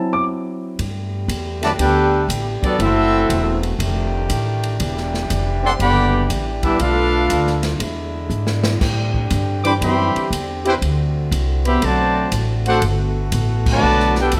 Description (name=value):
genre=jazz, big band swing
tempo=120 BPM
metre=4/4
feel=swing 66% on 8ths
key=G major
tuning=A4 = 440 Hz
part: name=warm grand piano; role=accompaniment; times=0.0-0.8 s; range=F#3 to D6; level=-23 LUFS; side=equal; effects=none
part: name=bright trombone section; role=sustained chords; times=0.8-14.4 s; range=D3 to A4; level=-30 LUFS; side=equal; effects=none
part: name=upright bass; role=bass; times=0.8-14.4 s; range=E1 to A2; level=-23 LUFS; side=equal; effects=none
part: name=swinging big-band drum kit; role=drums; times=0.8-14.4 s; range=crash cymbal, hi-hat, kick drum, ride cymbal, snare drum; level=-29 LUFS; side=equal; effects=none
part: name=clear trumpet section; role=melody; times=1.6-14.4 s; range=B3 to D6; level=-22 LUFS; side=equal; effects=none
part: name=mellow trombone section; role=second line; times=1.6-14.4 s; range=D3 to G4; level=-23 LUFS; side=equal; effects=none
room=moderate large studio reverb, RT60 1.3 s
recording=none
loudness=-19 LUFS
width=mono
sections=0.8-14.4 A section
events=stop 0.0-0.8; drum fill 8.3-8.8; band accent 13.6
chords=0.0 F#m7b5; 0.8 Gmaj9; 2.8 F#m7b5; 3.8 F13; 4.8 Em9; 6.8 Bm7b5; 7.8 E7; 8.8 Am11; 10.8 D7; 12.8 Gmaj9